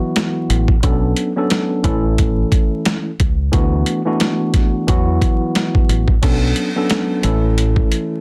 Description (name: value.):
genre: hip hop, boom-bap hip-hop.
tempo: 89 BPM.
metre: 4/4.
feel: swing 56% on 16ths.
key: B minor.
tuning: A4 = 440 Hz.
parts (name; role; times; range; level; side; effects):
tine electric piano; accompaniment; 0.0-8.2 s; E3 to A4; -21 LUFS; equal; overdrive, high-pass filter, low-pass filter.
boom bap sampler-style drum kit; drums; 0.2-8.1 s; crash cymbal, hi-hat, kick drum, snare drum; -19 LUFS; equal; overdrive.
deep dub fingered electric bass; bass; 0.5-7.8 s; A1 to E2; -20 LUFS; equal; none.
room: light reverb.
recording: dense, heavily limited modern master, vinyl crackle.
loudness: -17 LUFS.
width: mono.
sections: 0.0-6.2 A section; 6.2-8.2 B section.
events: none.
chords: 0.0 Esus2; 0.8 Bm7; 1.8 A; 3.5 D6; 4.9 Esus2; 6.2 Bm7; 7.2 A.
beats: 0.16 | 0.83 1.51 2.18 2.86 | 3.53 4.20 4.88 5.55 | 6.23 6.90 7.58.